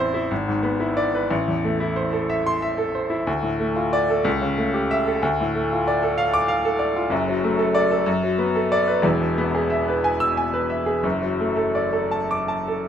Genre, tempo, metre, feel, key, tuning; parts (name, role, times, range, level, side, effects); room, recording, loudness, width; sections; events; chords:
classical, romantic character piece for solo piano; 62 BPM (dotted quarters); 6/8; uneven beats, rubato; A4 = 439 Hz
bright baby grand piano; solo; 0.0-12.9 s; E1 to E6; -20 LUFS; equal
light reverb; minimal, uncompressed stereo recording; -19 LUFS; side -9 dB against mid
0.0-12.9 A section
0.3 E7/G#; 1.3 Am; 3.3 Dm; 4.3 A7/C#; 5.2 Dm; 7.1 D/F#; 8.1 Bm7/F#; 9.0 E; 11.0 D/F#